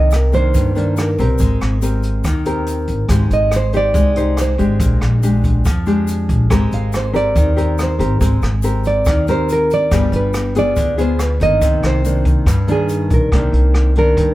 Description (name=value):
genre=bossa nova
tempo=141 BPM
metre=4/4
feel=straight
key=C minor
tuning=A4 = 439 Hz
part: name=nylon-string guitar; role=melody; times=0.0-14.3 s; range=Ab4 to F5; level=-18 LUFS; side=right 2 dB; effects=none
part: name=nylon-string guitar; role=accompaniment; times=0.0-14.3 s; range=G2 to C5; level=-19 LUFS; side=left 2 dB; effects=none
part: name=upright bass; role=bass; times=0.0-14.3 s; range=G1 to G2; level=-17 LUFS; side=equal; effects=none
part: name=jazz brush drum kit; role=drums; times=0.1-14.3 s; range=hi-hat, kick drum, rim click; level=-20 LUFS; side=equal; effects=none
part: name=tube shaker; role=percussion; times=0.1-13.3 s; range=none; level=-37 LUFS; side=left 5 dB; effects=none
room=light reverb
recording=heard from further back in the room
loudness=-13 LUFS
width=side -16 dB against mid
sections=0.0-13.3 A section; 13.3-14.3 B section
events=nylon-string guitar solo 0.0-13.3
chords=0.0 Cm9; 1.4 Abmaj9; 3.1 Abmaj7#11; 4.8 Bb6; 6.5 Abmaj9; 9.9 G7b9; 11.6 Cm9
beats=0.12 0.55 0.97 | 1.40 1.82 2.25 2.67 | 3.10 3.53 3.95 4.38 | 4.80 5.23 5.66 6.08 | 6.51 6.93 7.36 7.79 | 8.21 8.64 9.06 9.49 | 9.91 10.34 10.77 11.19 | 11.62 12.04 12.47 12.90 | 13.32 13.75 14.17